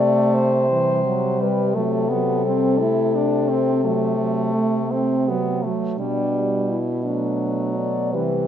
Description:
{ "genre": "classical, lyrical piece for horn quartet", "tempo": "56 BPM (dotted quarters)", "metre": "12/8", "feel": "rubato", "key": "G major", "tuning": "A4 = 440 Hz", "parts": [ { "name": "mellow French horn", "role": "melody", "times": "0.0-8.5 s", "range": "D4 to D5", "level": "-23 LUFS", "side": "left 5 dB", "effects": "none" }, { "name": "dark French horn", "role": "second line", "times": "0.0-8.5 s", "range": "F#3 to A3", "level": "-27 LUFS", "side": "right 8 dB", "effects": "none" }, { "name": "clear French horn", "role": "accompaniment", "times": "0.0-8.5 s", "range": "E3 to E4", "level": "-23 LUFS", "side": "left 1 dB", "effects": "none" }, { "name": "warm French horn", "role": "bass", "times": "0.0-8.5 s", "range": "B2 to C3", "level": "-25 LUFS", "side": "right 3 dB", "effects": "none" } ], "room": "moderate recital hall reverb, RT60 1.4 s", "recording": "nothing above 7.8 kHz", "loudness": "-18 LUFS", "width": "side -9 dB against mid", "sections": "0.0-8.5 A section", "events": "none", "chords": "0.0 Am/C; 1.8 Cmaj7(no3); 6.0 G/B" }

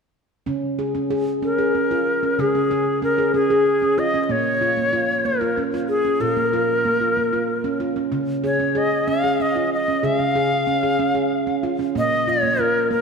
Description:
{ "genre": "world meditative, meditative tuned percussion", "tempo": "63 BPM (dotted quarters)", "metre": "6/8", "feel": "straight", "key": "Db major pentatonic", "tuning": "A4 = 440 Hz", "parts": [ { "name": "handpan", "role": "arpeggios", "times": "0.5-13.0 s", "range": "Bb2 to Ab4", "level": "-22 LUFS", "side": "right 2 dB", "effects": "none" }, { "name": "Native American-style cedar flute", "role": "melody", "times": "1.4-13.0 s", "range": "Ab4 to F5", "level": "-20 LUFS", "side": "left 2 dB", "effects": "tape echo" } ], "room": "wet scoring stage reverb, RT60 1.8 s, small room ambience", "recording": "none", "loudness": "-18 LUFS", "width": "side -5 dB against mid", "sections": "0.5-13.0 A section", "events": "none", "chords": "0.5 Db; 4.3 Bbm; 8.1 Db; 12.0 Bbm" }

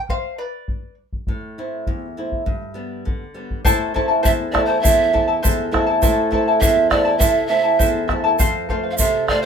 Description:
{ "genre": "andean folk, Andean ensemble", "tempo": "101 BPM", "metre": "2/4", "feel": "straight", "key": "A minor", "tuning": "A4 = 438 Hz", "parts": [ { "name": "charango", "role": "accompaniment", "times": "0.1-0.9, 3.6-9.4 s", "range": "E4 to A5", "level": "-21 LUFS", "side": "left 3 dB", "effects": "none" }, { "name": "bombo", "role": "percussion", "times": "0.1-9.4 s", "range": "none", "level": "-21 LUFS", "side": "equal", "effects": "none" }, { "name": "flamenco guitar", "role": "accompaniment", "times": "1.3-9.5 s", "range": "E2 to F4", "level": "-23 LUFS", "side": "right 1 dB", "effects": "none" }, { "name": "egg shaker", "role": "percussion", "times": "3.7-9.1 s", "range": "none", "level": "-24 LUFS", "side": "right 6 dB", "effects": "none" }, { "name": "mellow hollow pan flute", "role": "melody", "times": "4.3-9.5 s", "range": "C5 to F5", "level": "-18 LUFS", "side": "right 5 dB", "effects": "none" } ], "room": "moderate studio reverb, RT60 0.6 s", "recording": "minimal, uncompressed stereo recording", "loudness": "-16 LUFS", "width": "side -7 dB against mid", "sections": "0.0-3.7 A section; 3.7-9.5 B section", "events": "charango solo 0.0-3.7", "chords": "0.1 Bdim; 1.3 Am; 2.5 G; 3.7 Am; 8.4 F" }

